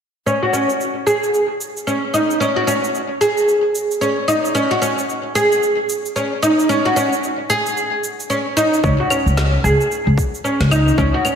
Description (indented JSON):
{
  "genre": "organic downtempo",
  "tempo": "112 BPM",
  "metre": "4/4",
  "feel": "swing 60% on 16ths",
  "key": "unclear",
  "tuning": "A4 = 440 Hz",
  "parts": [
    { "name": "oud", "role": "arpeggios", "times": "0.3-11.4 s", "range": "C#4 to G#4", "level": "-16 LUFS", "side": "equal", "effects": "low-pass filter, analog delay" },
    { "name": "electronic cabasa, claves and snare drum", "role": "drums", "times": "0.3-11.4 s", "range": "none", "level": "-26 LUFS", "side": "equal", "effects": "overdrive" },
    { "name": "upright bass", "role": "bass", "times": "8.8-11.1 s", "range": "C#2", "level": "-16 LUFS", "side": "equal", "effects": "sidechain pumping" },
    { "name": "electronic kick drum", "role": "drums", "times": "8.8-11.1 s", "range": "none", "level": "-22 LUFS", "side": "equal", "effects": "overdrive" }
  ],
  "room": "wet lush hall reverb, RT60 1.9 s",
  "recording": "dreamy mix soaked in reverb",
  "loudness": "-15 LUFS",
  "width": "side -7 dB against mid",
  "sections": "0.3-8.8 A section; 8.8-11.4 B section",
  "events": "filter sweep on oud 0.3-8.8",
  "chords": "0.3 C#sus2; 8.8 C#5"
}